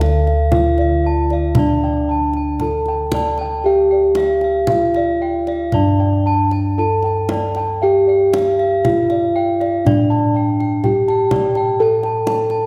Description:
Javanese gamelan; 57-65 BPM; 4/4; straight; A4 = 442 Hz
gamelan-type bronze metallophone; melody; 0.0-12.7 s; D4 to A4; -20 LUFS; equal
gamelan-type bossed gongs; arpeggios; 0.0-12.5 s; D5 to A5; -26 LUFS; equal
gamelan-type bronze metallophone; arpeggios; 0.0-12.7 s; D5 to A5; -26 LUFS; equal
gamelan-type bossed gongs; bass; 0.0-12.7 s; D2 to A4; -22 LUFS; equal
kendang; percussion; 0.0-12.6 s; -25 LUFS; equal
wet scoring stage reverb, RT60 1.5 s; recorded in a church or concert hall; -16 LUFS; mono
0.0-12.7 A section

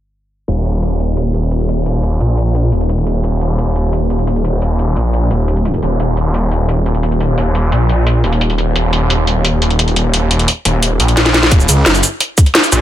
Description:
dark technical drum and bass; 174 BPM; 4/4; straight; A4 = 439 Hz
snarling distorted saw bass; bass; 0.5-12.8 s; Eb1 to Db2; -13 LUFS; equal; distortion, overdrive
drum and bass drum kit; drums; 0.5-12.8 s; hi-hat, shaker, snare drum; -15 LUFS; equal
electronic kick drum; drums; 11.5-12.4 s; -8 LUFS; equal
little or no reverb; low-pass filter; -12 LUFS; side -12 dB against mid
0.5-11.5 A section; 11.5-12.8 B section
filter sweep 0.5-11.5; drum fill 11.2-11.5; drop 11.5-12.8

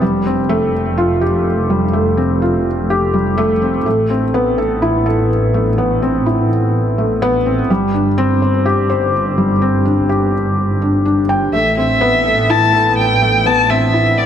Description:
piano and strings electronica; 125 BPM; 4/4; straight; A minor; A4 = 440 Hz
felt-muted upright piano; riff; 0.0-14.3 s; G3 to G5; -15 LUFS; left 1 dB; tape echo
dark studio double bass section; bass; 0.0-14.3 s; F1 to A1; -18 LUFS; right 1 dB
dark violin; melody; 11.5-14.3 s; D5 to A5; -13 LUFS; left 1 dB
moderate echo chamber reverb, RT60 1.8 s; -12 LUFS; side -9 dB against mid
0.0-14.3 A section
0.0 Fadd9; 3.9 Amadd9; 7.7 Gsus4; 11.5 Amadd9

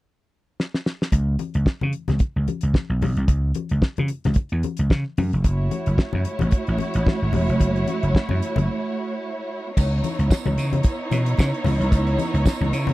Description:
disco; 111 BPM; 4/4; swing 56% on 16ths; C# minor; A4 = 440 Hz
damped 70s drum kit; drums; 0.6-12.9 s; crash cymbal, hi-hat, kick drum, snare drum; -20 LUFS; equal
vintage slap bass; bass; 1.1-12.9 s; E1 to C#3; -21 LUFS; equal
congas; percussion; 1.1-12.9 s; -29 LUFS; left 6 dB
dark studio string section; sustained chords; 5.4-12.9 s; A3 to C#5; -26 LUFS; right 2 dB
tambourine; percussion; 9.8-12.9 s; -41 LUFS; right 21 dB
little or no reverb; dry, close 1970s-style studio recording; -20 LUFS; side -18 dB against mid
0.0-1.1 A section; 1.1-9.8 B section; 9.8-12.9 C section
drum fill 0.6-1.1; break 8.7-9.8
0.0 N.C.; 5.4 F#m7; 9.8 C#m9

